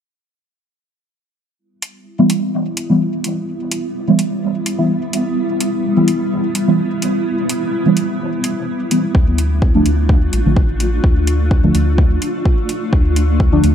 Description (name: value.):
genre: dub techno.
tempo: 127 BPM.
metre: 4/4.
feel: swing 53% on 16ths.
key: E phrygian.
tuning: A4 = 445 Hz.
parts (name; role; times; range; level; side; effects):
granular cloud pad; sustained chords; 2.6-13.7 s; G3 to F4; -20 LUFS; equal; built-in reverb, sidechain pumping.
electronic hi-hat; drums; 1.8-13.7 s; none; -23 LUFS; equal; studio reverb.
deep mellow chord stab; stabs; 2.2-13.7 s; D3 to E4; -17 LUFS; right 1 dB; chorus, phaser, dub echo.
soft dub sub bass; bass; 9.1-13.7 s; A1 to D2; -16 LUFS; equal; sidechain pumping.
electronic kick drum; drums; 9.1-13.5 s; none; -14 LUFS; equal; studio reverb.
room: moderate lush hall reverb, RT60 1.9 s.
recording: none.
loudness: -14 LUFS.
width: side -9 dB against mid.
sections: 1.6-13.7 A section.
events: filter sweep on synth stab 1.6-13.7.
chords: 1.6 Em; 9.1 Dm.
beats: | 1.59 2.06 2.53 3.01 | 3.48 3.95 4.42 4.90 | 5.37 5.84 6.31 6.79 | 7.26 7.73 8.20 8.68 | 9.15 9.62 10.09 10.57 | 11.04 11.51 11.98 12.46 | 12.93 13.40.